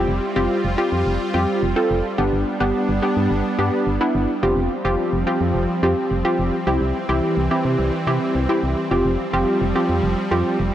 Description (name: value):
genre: pop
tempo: 107 BPM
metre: 4/4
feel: straight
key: unclear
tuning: A4 = 440 Hz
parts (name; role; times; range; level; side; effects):
- funky polysynth comp; accompaniment; 0.0-10.6 s; B3 to A4; -20 LUFS; equal; chorus, shimmer reverb
- lush unison pad; sustained chords; 0.0-10.7 s; E3 to F4; -24 LUFS; right 1 dB; chorus, shimmer reverb
- solid FM bass; bass; 0.0-10.7 s; F1 to C3; -23 LUFS; equal; none
room: moderate lush hall reverb, RT60 2.7 s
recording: none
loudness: -18 LUFS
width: side -11 dB against mid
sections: 0.0-10.7 A section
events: none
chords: 0.0 Fsus2; 2.2 G; 4.4 Fsus2; 6.7 C; 8.9 Fsus2